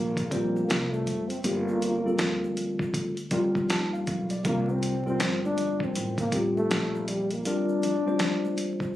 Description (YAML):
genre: hip hop, jazz-hop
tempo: 80 BPM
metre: 4/4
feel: swing 62% on 16ths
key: G minor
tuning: A4 = 440 Hz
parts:
  - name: breathy trombone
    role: melody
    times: 0.0-8.9 s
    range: G3 to D4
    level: -30 LUFS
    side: left 1 dB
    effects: none
  - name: tine electric piano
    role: accompaniment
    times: 0.0-9.0 s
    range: G3 to A5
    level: -28 LUFS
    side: left 1 dB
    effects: lush chorus
  - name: upright bass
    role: bass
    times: 0.0-7.4 s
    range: F#1 to Eb2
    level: -33 LUFS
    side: equal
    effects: none
  - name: dusty soul sampler-style drum kit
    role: drums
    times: 0.2-8.9 s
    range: hi-hat, kick drum, snare drum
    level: -30 LUFS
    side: equal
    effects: none
  - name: egg shaker and congas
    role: percussion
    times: 0.2-8.9 s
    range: none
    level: -42 LUFS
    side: right 2 dB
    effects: none
room: light reverb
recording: recorded on a phone in the room, studio reverb, vinyl crackle, compression, lossy compression artefacts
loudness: -25 LUFS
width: side -13 dB against mid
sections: 0.0-9.0 A section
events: none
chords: 0.0 Gm9; 4.4 Csus2